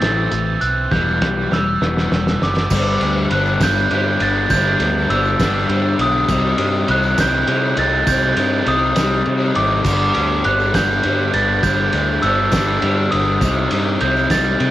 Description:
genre	indie rock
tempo	67 BPM (dotted quarters)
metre	6/8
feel	straight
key	G major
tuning	A4 = 440 Hz
part	glockenspiel with rubber mallets	melody	0.0-14.7 s	D6 to A6	-19 LUFS	right 2 dB	cassette tape
part	biting overdriven guitar	riff	0.0-14.7 s	E3 to C4	-27 LUFS	right 7 dB	wide subtle chorus, cassette tape
part	overdriven semi-hollow guitar	riff	0.0-14.7 s	G2 to Eb4	-21 LUFS	left 5 dB	cassette tape
part	modern bright picked electric bass	bass	0.0-14.7 s	E1 to C3	-22 LUFS	right 1 dB	none
part	cloth-damped thuddy drum kit	drums	0.0-14.7 s	crash cymbal, hi-hat, kick drum, ride cymbal, snare drum	-21 LUFS	right 1 dB	cassette tape
part	tambourine	percussion	2.7-14.4 s	none	-35 LUFS	right 8 dB	none
room	light reverb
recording	home recording on cassette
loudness	-14 LUFS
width	side -14 dB against mid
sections	0.0-2.7 A section; 2.7-14.7 B section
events	drum fill 0.9-2.7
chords	0.0 Am; 0.9 Em; 2.7 G; 6.3 Cm; 9.9 G; 13.4 Cm

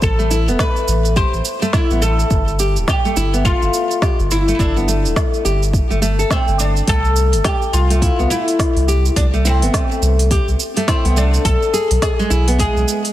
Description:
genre	organic downtempo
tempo	105 BPM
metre	4/4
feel	swing 60% on 16ths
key	unclear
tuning	A4 = 442 Hz
part	oud	melody	0.0-13.1 s	C4 to C5	-20 LUFS	left 1 dB	digital delay
part	warm sub bass	bass	0.0-12.8 s	D1 to C2	-16 LUFS	equal	sidechain pumping
part	electronic kick drum	drums	0.0-12.7 s	none	-18 LUFS	equal	none
part	organic electronic drum kit	drums	0.0-13.1 s	hi-hat, shaker, snare drum	-24 LUFS	right 2 dB	none
part	bronze singing bowl	texture	0.0-13.1 s	B5	-42 LUFS	left 5 dB	none
part	nylon-string guitar	arpeggios	0.2-13.1 s	G#3 to A4	-21 LUFS	left 1 dB	low-pass filter, digital delay
room	light reverb, small room ambience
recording	dense, heavily limited modern master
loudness	-14 LUFS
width	side -13 dB against mid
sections	0.0-13.1 A section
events	none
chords	0.0 Am; 2.3 G; 6.9 C5; 11.5 E/B (rootless)

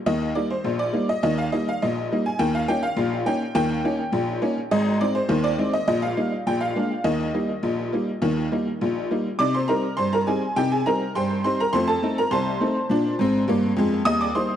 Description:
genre	ragtime piano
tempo	103 BPM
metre	2/4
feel	straight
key	Eb major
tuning	A4 = 442 Hz
part	tack piano	solo	0.1-14.6 s	Ab1 to Eb6	-20 LUFS	equal	analog delay
room	moderate spring reverb, RT60 2.0 s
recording	dark, warm production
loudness	-20 LUFS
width	side -10 dB against mid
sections	0.1-9.4 A section; 9.4-14.6 B section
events	none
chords	0.1 Eb; 2.4 Eb7; 4.7 Ab; 5.9 Eb/Bb; 6.5 Bb7; 7.0 Eb; 9.4 Cm; 11.7 F7; 12.9 Bb7; 14.0 Eb

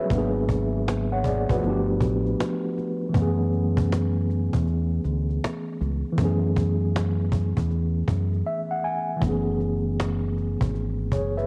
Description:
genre	lo-fi hip hop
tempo	79 BPM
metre	4/4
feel	swing 65% on 16ths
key	F# minor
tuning	A4 = 440 Hz
part	mellow tine electric piano	accompaniment	0.0-11.5 s	E3 to G#5	-28 LUFS	equal	cassette tape, low-pass filter
part	deep dub fingered electric bass	bass	0.1-11.5 s	F#1 to F#2	-28 LUFS	equal	none
part	cajon	drums	0.1-11.4 s	none	-30 LUFS	equal	cassette tape
room	light reverb, studio ambience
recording	home recording on cassette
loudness	-25 LUFS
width	mono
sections	0.0-9.2 A section; 9.2-11.5 B section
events	tine electric piano fill 8.1-9.2; break 8.5-9.2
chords	0.1 G#m7b5; 1.6 G9; 3.1 F#m11

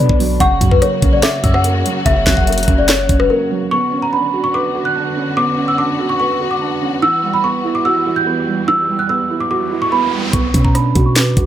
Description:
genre	hip hop, trap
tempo	145 BPM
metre	4/4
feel	half-time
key	B harmonic minor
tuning	A4 = 441 Hz
part	worn celesta	melody	0.0-11.5 s	A#4 to G6	-17 LUFS	left 1 dB	low-pass filter, tape echo
part	dark detuned synth bell	second line	0.0-3.3 s	B5 to F#6	-27 LUFS	left 2 dB	chorus, tremolo, tape echo
part	felt-muted upright piano	accompaniment	0.0-11.5 s	C#3 to C#5	-19 LUFS	right 5 dB	low-pass filter
part	warm symphonic string section	sustained chords	0.0-10.3 s	C#3 to F#4	-25 LUFS	left 3 dB	none
part	clean 808-style bass	bass	0.0-3.3, 10.3-11.5 s	F#1 to B2	-17 LUFS	equal	none
part	trap drum kit	drums	0.1-3.3, 10.3-11.5 s	handclaps, hi-hat, kick drum, rim click, snare drum	-15 LUFS	equal	none
part	riser	sound effects	9.4-10.3 s	none	-26 LUFS	right 1 dB	none
room	small room ambience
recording	none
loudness	-13 LUFS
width	side -11 dB against mid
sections	0.0-3.7 A section; 3.7-10.3 B section; 10.3-11.5 C section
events	break 3.3-3.7; riser 9.4-10.3; filter sweep 10.3-11.5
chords	0.4 F#; 3.7 Bmadd9; 7.0 Emadd9; 10.3 Bmadd9

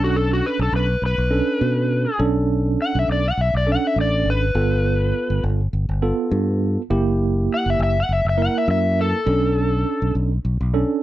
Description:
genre	straight-eighth soul blues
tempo	102 BPM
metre	4/4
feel	swing 55% on 16ths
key	unclear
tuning	A4 = 441 Hz
part	overdriven slide guitar	melody	0.0-10.1 s	F#4 to F#5	-22 LUFS	left 2 dB	none
part	tine electric piano	accompaniment	0.0-11.0 s	A#3 to A#4	-22 LUFS	right 4 dB	medium stereo tremolo
part	fingered electric bass	bass	0.0-10.8 s	F#1 to B2	-20 LUFS	equal	none
room	light reverb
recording	none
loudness	-18 LUFS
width	side -14 dB against mid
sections	0.0-11.0 A section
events	none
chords	0.0 Bm7; 4.6 G7; 6.9 F#7b9; 9.3 Bm7

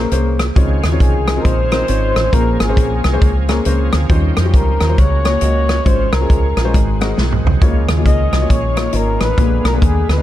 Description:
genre	uptempo gospel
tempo	136 BPM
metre	4/4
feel	swing 62% on 8ths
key	Db major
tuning	A4 = 440 Hz
part	breathy trumpet	melody	0.0-10.2 s	Ab4 to Eb5	-21 LUFS	left 1 dB	none
part	warm baby grand piano	accompaniment	0.0-10.2 s	Ab2 to Eb5	-21 LUFS	left 4 dB	none
part	deep dub fingered electric bass	bass	0.0-10.2 s	Ab1 to F2	-16 LUFS	equal	none
part	natural country drum kit	drums	0.1-10.2 s	hi-hat, kick drum, rim click, snare drum, toms	-16 LUFS	equal	none
part	bright tonewheel organ	sustained chords	0.6-10.2 s	D3 to Ab4	-26 LUFS	right 4 dB	slow rotary speaker, overdrive, chorus vibrato
room	light reverb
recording	dark, warm production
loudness	-12 LUFS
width	side -13 dB against mid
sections	0.0-10.2 A section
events	drum fill 7.2-7.6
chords	0.0 Bbm9; 0.6 Dbmaj9; 2.3 Bbm9; 4.1 Eb13; 5.0 Gb/Db; 5.9 Db/Ab; 6.7 Ab9; 7.6 Db69; 9.4 Bb7b9

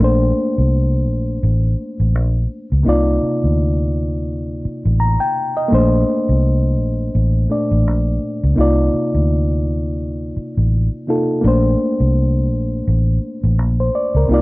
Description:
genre	R&B, neo-soul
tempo	84 BPM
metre	4/4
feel	swing 59% on 16ths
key	Bb major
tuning	A4 = 440 Hz
part	bright reed electric piano	accompaniment	0.0-14.4 s	Bb2 to Bb5	-19 LUFS	equal	none
part	vintage muted fingered electric bass	bass	0.0-14.4 s	A1 to D2	-16 LUFS	equal	none
room	little or no reverb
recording	dry, close 1970s-style studio recording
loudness	-15 LUFS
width	side -21 dB against mid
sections	0.0-14.4 A section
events	none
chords	0.0 Bbmaj9; 2.9 Cm11; 5.7 Bbmaj9; 8.6 Cm11; 11.4 Bbmaj9

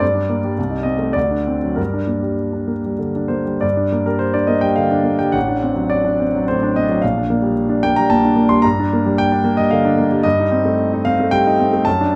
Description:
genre	classical, romantic character piece for solo piano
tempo	93-114 BPM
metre	3/4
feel	rubato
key	G minor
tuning	A4 = 440 Hz
part	warm concert grand piano	solo	0.0-12.2 s	A1 to C6	-17 LUFS	equal	none
room	light reverb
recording	close, detailed microphones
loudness	-17 LUFS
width	mono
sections	0.0-3.6 A section; 3.6-12.2 A section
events	none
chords	0.0 Gm; 0.6 Adim/C; 1.2 D7; 1.8 Gm; 5.4 D7/A; 7.0 Gm/Bb; 8.6 Gm; 10.2 Am7b5/G

